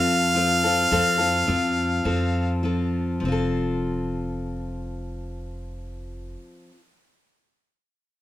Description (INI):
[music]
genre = folk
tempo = 99-110 BPM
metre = 4/4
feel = straight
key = F major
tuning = A4 = 439 Hz
[part]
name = bright harmonica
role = melody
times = 0.0-2.6 s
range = F5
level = -21 LUFS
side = equal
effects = none
[part]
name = picked steel-string acoustic guitar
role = accompaniment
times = 0.0-6.8 s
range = F3 to A4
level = -26 LUFS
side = left 2 dB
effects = none
[part]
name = upright bass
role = bass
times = 0.0-6.3 s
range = F1 to F2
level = -29 LUFS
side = right 1 dB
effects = none
[sound]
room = light reverb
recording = minimal, uncompressed stereo recording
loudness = -21 LUFS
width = side -13 dB against mid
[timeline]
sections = 0.0-3.2 A section; 3.2-8.1 B section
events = slowing down 0.0-3.2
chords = 0.0 F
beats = 0.36 | 0.91 1.47 2.04 2.63 | 3.22 3.83 4.43 5.03 | 5.64 6.24